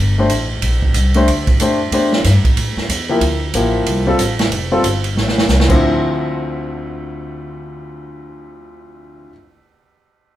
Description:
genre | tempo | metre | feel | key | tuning
jazz, big band swing | 185 BPM | 4/4 | swing 61% on 8ths | D minor | A4 = 441 Hz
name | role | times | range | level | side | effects
upright bass | bass | 0.0-9.2 s | F1 to A2 | -18 LUFS | equal | none
warm baby grand piano | accompaniment | 0.2-9.3 s | D2 to C5 | -18 LUFS | left 2 dB | none
swinging big-band drum kit | drums | 0.3-5.8 s | crash cymbal, hi-hat, kick drum, ride cymbal, snare drum | -18 LUFS | right 1 dB | none
room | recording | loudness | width
moderate large studio reverb, RT60 0.9 s | band playing live in one room | -13 LUFS | side -13 dB against mid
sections
0.0-5.8 A section; 5.8-8.4 B section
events
drum fill 5.2-5.8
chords
0.0 Fadd9 (rootless); 0.6 Bbmaj9; 1.9 Emadd11; 2.6 A5; 3.2 Dm7

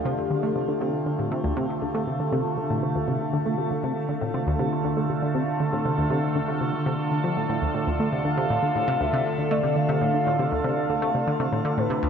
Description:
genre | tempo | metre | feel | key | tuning
ambient | 119 BPM | 4/4 | straight | D minor | A4 = 445 Hz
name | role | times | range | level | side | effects
evolving wavetable pad | sustained chords | 0.0-12.1 s | D3 to A4 | -25 LUFS | equal | phaser, built-in reverb, shimmer reverb
tight sequenced synth | riff | 0.1-12.1 s | D2 to A3 | -27 LUFS | equal | chorus, cassette tape, tape echo
expressive portamento lead | melody | 8.3-12.1 s | B4 to F5 | -27 LUFS | left 1 dB | wide subtle chorus, cassette tape, shimmer reverb, tape echo
room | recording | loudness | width
wet huge ambient reverb, RT60 7.9 s | none | -22 LUFS | side -7 dB against mid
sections
0.0-12.1 A section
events
none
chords
0.0 Dm

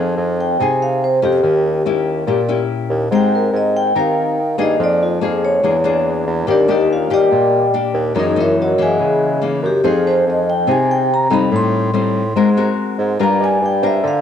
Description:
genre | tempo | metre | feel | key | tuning
bossa nova | 143 BPM | 4/4 | straight | unclear | A4 = 441 Hz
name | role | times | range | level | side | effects
nylon-string guitar | accompaniment | 0.0-14.2 s | F#2 to Bb4 | -19 LUFS | left 6 dB | none
mellow bassoon | bass | 0.0-14.2 s | Eb2 to Eb3 | -19 LUFS | right 3 dB | none
vibraphone with medium mallets | melody | 0.4-14.2 s | D4 to C6 | -17 LUFS | equal | slapback echo
warm baby grand piano | accompaniment | 9.8-14.2 s | C5 to D5 | -26 LUFS | right 11 dB | none
room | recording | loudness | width
moderate spring reverb, RT60 1.9 s, small room ambience | 1960s-style stereo with parts hard left and right | -14 LUFS | side -8 dB against mid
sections
0.0-14.2 A section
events
vibraphone solo 0.0-14.2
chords
0.0 Fm7; 1.4 Eb7b9; 3.1 Abmaj9; 4.8 Fm7; 5.6 E7#11; 6.5 Ebmaj7; 8.2 F#13; 9.8 Fm7; 11.5 Am7b5; 12.4 Ab9; 13.2 Gm7

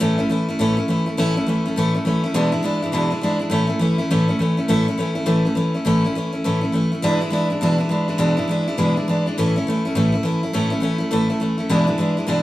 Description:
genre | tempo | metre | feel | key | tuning
rock | 205 BPM | 4/4 | swing 62% on 8ths | A major | A4 = 442 Hz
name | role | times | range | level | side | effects
picked steel-string acoustic guitar | solo | 0.0-12.4 s | E2 to E4 | -18 LUFS | equal | none
room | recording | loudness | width
moderate large studio reverb, RT60 0.9 s | band playing live in one room | -18 LUFS | side -15 dB against mid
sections
0.0-4.7 A section; 4.7-12.4 B section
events
none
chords
0.0 A; 2.4 E7; 3.5 A; 7.0 E7; 9.4 A; 11.7 E7

